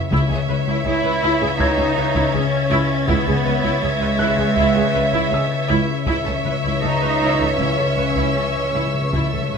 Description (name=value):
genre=cinematic, suspense film score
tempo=80 BPM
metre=4/4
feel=straight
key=C# minor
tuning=A4 = 440 Hz
part: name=muted symphonic violin section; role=melody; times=0.0-9.6 s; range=E5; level=-26 LUFS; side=left 1 dB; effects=none
part: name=muted chamber violin section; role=second line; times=0.0-9.6 s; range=C#5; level=-28 LUFS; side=right 2 dB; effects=none
part: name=warm French horn section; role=sustained chords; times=0.0-9.6 s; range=B4 to E5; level=-26 LUFS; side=left 2 dB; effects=none
part: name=concert harp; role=riff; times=0.0-9.6 s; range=C#3 to C#4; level=-24 LUFS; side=left 9 dB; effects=none
part: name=overtone-sweeping drone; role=drone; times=0.0-9.6 s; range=C#2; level=-31 LUFS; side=right 1 dB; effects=chorus, built-in reverb
part: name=felt-muted upright piano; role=texture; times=0.0-9.6 s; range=E6 to G#6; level=-32 LUFS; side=equal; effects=none
part: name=muted symphonic viola section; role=accompaniment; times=0.1-9.6 s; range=E4 to B4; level=-26 LUFS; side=equal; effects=none
part: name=muted symphonic double bass section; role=bass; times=0.1-9.6 s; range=C#2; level=-26 LUFS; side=right 4 dB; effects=none
part: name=taiko ensemble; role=drums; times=0.1-9.6 s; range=none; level=-27 LUFS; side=equal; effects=none
part: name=timpani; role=percussion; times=0.1-1.2, 6.1-9.6 s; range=C#3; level=-30 LUFS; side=right 1 dB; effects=none
part: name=muted symphonic violin section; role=texture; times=0.1-9.6 s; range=C#6 to A6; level=-30 LUFS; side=left 2 dB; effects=none
part: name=muted studio cello section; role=bass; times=0.8-9.6 s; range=G#3 to E4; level=-23 LUFS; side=right 3 dB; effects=none
room=moderate scoring stage reverb, RT60 1.8 s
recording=none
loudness=-16 LUFS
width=side -6 dB against mid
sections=0.0-9.6 A section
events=timpani fill 6.1-9.6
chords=0.1 C#m7